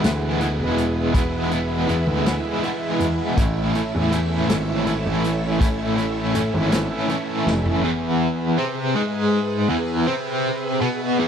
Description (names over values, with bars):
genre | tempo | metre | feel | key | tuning
psychedelic rock | 54 BPM (dotted quarters) | 6/8 | straight | E major | A4 = 441 Hz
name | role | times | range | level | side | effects
string machine, violins | sustained chords | 0.0-11.3 s | E4 to E5 | -29 LUFS | right 3 dB | ensemble chorus
cranked stack guitar | riff | 0.0-11.3 s | E2 to E4 | -21 LUFS | equal | overdrive, tremolo
dark grand piano | bass | 0.0-7.6 s | E1 to A2 | -24 LUFS | equal | none
vintage drum kit | drums | 0.0-7.8 s | hi-hat, kick drum, snare drum, toms | -23 LUFS | equal | none
room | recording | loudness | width
small room ambience | dry, close 1970s-style studio recording | -19 LUFS | side -8 dB against mid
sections
0.0-7.8 A section; 7.8-11.3 B section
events
drum fill 7.5-7.8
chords
0.0 E; 3.4 A; 7.8 E